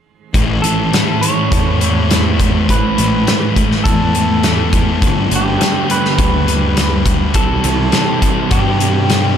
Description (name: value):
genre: rock, shoegaze and dream pop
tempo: 103 BPM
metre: 4/4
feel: straight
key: unclear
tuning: A4 = 441 Hz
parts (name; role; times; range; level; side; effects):
- crunchy overdriven guitar; riff; 0.3-9.4 s; G2 to A4; -19 LUFS; right 6 dB; reverse reverb
- thick fuzz guitar; riff; 0.3-9.4 s; G2 to C4; -18 LUFS; left 7 dB; distortion, wide subtle chorus
- fuzz picked electric bass; bass; 0.3-9.4 s; G1 to G2; -18 LUFS; equal; overdrive
- loose indie drum kit; drums; 0.3-9.2 s; hi-hat, kick drum, snare drum; -17 LUFS; equal; none
- electric guitar through a small old amp; melody; 0.6-9.4 s; G4 to C#5; -20 LUFS; right 1 dB; ping-pong delay
room: wet huge ambient reverb, RT60 8.4 s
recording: dreamy mix soaked in reverb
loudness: -12 LUFS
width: side -8 dB against mid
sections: 0.3-9.4 A section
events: none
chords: 0.3 A; 5.0 G; 7.4 C